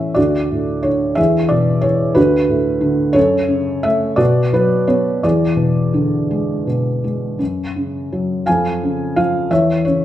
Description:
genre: classical, lyrical solo piano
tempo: 54-62 BPM (dotted quarters)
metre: 6/8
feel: rubato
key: unclear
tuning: A4 = 439 Hz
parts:
  - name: felt-muted upright piano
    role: solo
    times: 0.0-10.0 s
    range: D2 to G#5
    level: -14 LUFS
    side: equal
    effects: none
room: moderate recital hall reverb, RT60 1.3 s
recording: minimal, uncompressed stereo recording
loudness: -14 LUFS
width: side -12 dB against mid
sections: 0.0-7.4 A section; 7.4-10.0 B section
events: none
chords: 0.2 D; 1.2 E; 2.2 Bm7/D; 3.2 F#m; 4.2 B5; 5.2 E7; 7.4 F#5; 8.5 C#/E#; 9.5 C#m/E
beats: 0.17 | 1.19 2.17 | 3.16 4.20 | 5.24 6.31 | 7.40 8.47 | 9.51

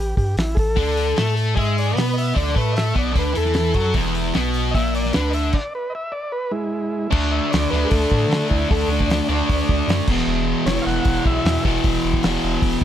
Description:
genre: garage rock duo or trio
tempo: 152 BPM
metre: 4/4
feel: straight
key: unclear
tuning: A4 = 439 Hz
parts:
  - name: overdriven combo organ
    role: melody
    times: 0.0-11.6 s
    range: G#3 to F#5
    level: -25 LUFS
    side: equal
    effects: none
  - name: soft dub sub bass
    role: bass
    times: 0.0-12.8 s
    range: E1 to D3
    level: -23 LUFS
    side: equal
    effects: overdrive
  - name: cloth-damped thuddy drum kit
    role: drums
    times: 0.2-12.8 s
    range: crash cymbal, hi-hat, kick drum, snare drum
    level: -23 LUFS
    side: equal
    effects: none
  - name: fuzz guitar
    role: riff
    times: 0.8-12.8 s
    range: E2 to B4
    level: -21 LUFS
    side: equal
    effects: distortion
room: light reverb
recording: none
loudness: -18 LUFS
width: side -10 dB against mid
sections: 0.0-7.1 A section; 7.1-12.8 B section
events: stop 5.5-7.1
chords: 0.0 A5; 0.8 D5; 4.0 E5; 7.1 D5; 10.1 E5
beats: 0.37 | 0.77 1.16 1.56 1.96 | 2.36 2.76 3.15 3.55 | 3.95 4.35 4.75 5.14 | 5.54 5.94 6.33 6.73 | 7.12 7.52 7.91 8.31 | 8.70 9.09 9.48 9.88 | 10.27 10.66 11.05 11.45 | 11.84 12.23 12.62

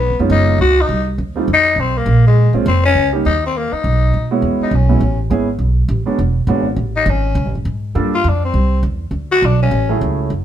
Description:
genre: jazz, small-group swing and bop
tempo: 204 BPM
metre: 4/4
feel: swing 60% on 8ths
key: E major from 4.4 s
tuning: A4 = 440 Hz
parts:
  - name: growling tenor saxophone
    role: melody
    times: 0.0-10.0 s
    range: Ab3 to F#4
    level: -16 LUFS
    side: left 3 dB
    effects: none
  - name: upright bass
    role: bass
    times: 0.0-10.4 s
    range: E1 to B2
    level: -15 LUFS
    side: right 1 dB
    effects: none
  - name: warm grand piano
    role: accompaniment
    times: 0.2-10.3 s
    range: F#3 to A4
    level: -19 LUFS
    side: right 3 dB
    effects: none
room: moderate studio reverb, RT60 0.7 s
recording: band playing live in one room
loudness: -13 LUFS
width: side -10 dB against mid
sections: 0.0-4.4 A section; 4.4-10.4 B section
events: tenor saxophone solo 4.4-10.4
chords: 0.0 B6; 0.9 Cm; 1.5 B(#11); 2.1 Bbm7; 3.2 Eb5; 3.8 Badd9; 4.4 E69; 5.6 Bm7; 6.2 E13; 6.8 Amaj7; 8.0 Gm7; 8.5 C; 9.1 Dmaj9#11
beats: 0.01 0.30 0.59 | 0.89 1.18 1.48 1.77 | 2.07 2.36 2.65 2.95 | 3.24 3.54 3.83 4.13 | 4.42 4.71 5.01 5.30 | 5.60 5.89 6.19 6.48 | 6.78 7.07 7.37 7.66 | 7.96 8.25 8.54 8.84 | 9.13 9.43 9.72 10.02 | 10.31

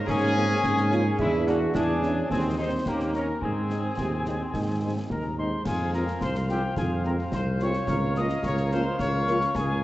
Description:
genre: military-style march for wind band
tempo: 108 BPM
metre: 2/4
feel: straight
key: unclear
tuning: A4 = 440 Hz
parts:
  - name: mellow trumpet section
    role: melody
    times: 0.0-9.8 s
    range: E4 to Eb5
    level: -32 LUFS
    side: left 1 dB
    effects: none
  - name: mellow euphonium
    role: second line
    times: 0.0-5.3 s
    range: Bb3 to G#4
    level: -31 LUFS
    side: right 2 dB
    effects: none
  - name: mellow wooden piccolo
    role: second line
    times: 0.0-9.8 s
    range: E5 to Eb6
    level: -33 LUFS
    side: left 2 dB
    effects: none
  - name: dark trombone section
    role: sustained chords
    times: 0.0-9.4 s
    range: C3 to D4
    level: -33 LUFS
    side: right 1 dB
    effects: none
  - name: warm woodwind section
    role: second line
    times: 0.1-9.8 s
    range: G#3 to F5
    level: -34 LUFS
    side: left 1 dB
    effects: none
  - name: mellow tuba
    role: bass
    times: 0.1-9.8 s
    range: C2 to Ab2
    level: -28 LUFS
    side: right 1 dB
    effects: none
  - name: concert snare drum, concert bass drum and clash cymbals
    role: drums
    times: 0.1-9.8 s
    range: none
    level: -34 LUFS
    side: left 1 dB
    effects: none
  - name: warm French horn section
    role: accompaniment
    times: 0.4-9.4 s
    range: E3 to F4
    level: -37 LUFS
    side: left 2 dB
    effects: none
room: wet concert hall reverb, RT60 2.1 s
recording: worn, warbling old tape, cassette tape, warbly pitch drift, nothing above 8.0 kHz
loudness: -23 LUFS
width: side -16 dB against mid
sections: 0.0-5.7 A section; 5.7-9.8 B section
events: none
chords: 0.0 Bbm7/Ab; 1.2 E7; 2.3 Ab/Eb; 2.9 Eb7; 3.4 Ab; 5.7 Fm; 7.9 Bbm/Db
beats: | 0.08 0.64 | 1.19 1.75 | 2.31 2.86 | 3.42 3.98 | 4.54 5.09 | 5.65 6.21 | 6.76 7.32 | 7.88 8.44 | 8.99 9.55

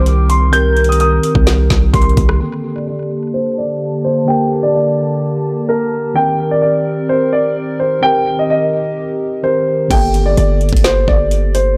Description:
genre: hip hop, trap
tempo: 128 BPM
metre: 4/4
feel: half-time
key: G minor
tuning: A4 = 440 Hz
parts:
  - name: dark concert grand piano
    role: melody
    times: 0.0-11.8 s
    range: Bb4 to G6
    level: -19 LUFS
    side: equal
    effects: low-pass filter, tape echo
  - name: warm velvety synth lead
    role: second line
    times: 0.0-1.9 s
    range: Bb4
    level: -23 LUFS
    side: equal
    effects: chorus, tape echo
  - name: mellow tine electric piano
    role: accompaniment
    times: 0.0-11.8 s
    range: D3 to Bb4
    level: -22 LUFS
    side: equal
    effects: low-pass filter, tape echo
  - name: hollow soft pad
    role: sustained chords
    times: 0.0-9.9 s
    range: D3 to A5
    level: -25 LUFS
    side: equal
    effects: chorus, low-pass filter
  - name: hard-hitting 808-style bass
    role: bass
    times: 0.0-2.4, 9.9-11.8 s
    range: G1 to C2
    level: -16 LUFS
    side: equal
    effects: none
  - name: trap drum kit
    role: drums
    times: 0.1-2.4, 9.9-11.7 s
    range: crash cymbal, hi-hat, kick drum, rim click, snare drum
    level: -18 LUFS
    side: equal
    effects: none
room: digital ambience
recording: echo-heavy mix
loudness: -14 LUFS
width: mono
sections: 0.0-2.4 A section; 2.4-9.9 B section; 9.9-11.8 C section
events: filter sweep 2.4-9.9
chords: 0.0 Cm7; 2.4 Gmadd9; 6.2 Cm7; 9.9 Gmadd9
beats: 0.06 | 0.53 1.00 1.47 1.94 | 2.41 2.87 3.34 3.81 | 4.28 4.75 5.22 5.69 | 6.16 6.62 7.09 7.56 | 8.03 8.50 8.97 9.44 | 9.91 10.37 10.84 11.31

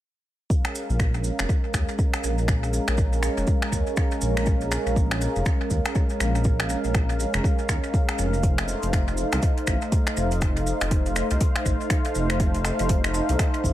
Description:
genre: afro house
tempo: 121 BPM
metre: 4/4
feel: swing 60% on 16ths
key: unclear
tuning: A4 = 439 Hz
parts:
  - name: warm analog pad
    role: sustained chords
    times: 0.5-13.7 s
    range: Ab3 to F5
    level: -27 LUFS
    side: right 1 dB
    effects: chorus, sidechain pumping
  - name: electronic kick drum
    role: drums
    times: 0.5-13.7 s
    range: none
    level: -23 LUFS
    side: equal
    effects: none
  - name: cabasa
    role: percussion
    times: 0.5-13.7 s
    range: none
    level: -38 LUFS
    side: right 3 dB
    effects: tape echo
  - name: deep house drum kit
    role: drums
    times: 0.6-13.6 s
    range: finger snaps, hi-hat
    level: -30 LUFS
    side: left 1 dB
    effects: tape echo
  - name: dark detuned saw bass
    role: bass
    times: 0.9-13.7 s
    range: F1 to Eb2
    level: -26 LUFS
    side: equal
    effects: sidechain pumping
room: little or no reverb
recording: echo-heavy mix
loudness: -21 LUFS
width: side -14 dB against mid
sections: 0.5-13.7 A section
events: none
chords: 0.5 Bbm7; 8.4 F7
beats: | 0.50 1.00 1.49 1.99 | 2.48 2.98 3.48 3.97 | 4.47 4.96 5.46 5.96 | 6.45 6.95 7.44 7.94 | 8.44 8.93 9.43 9.92 | 10.42 10.91 11.41 11.91 | 12.40 12.90 13.39

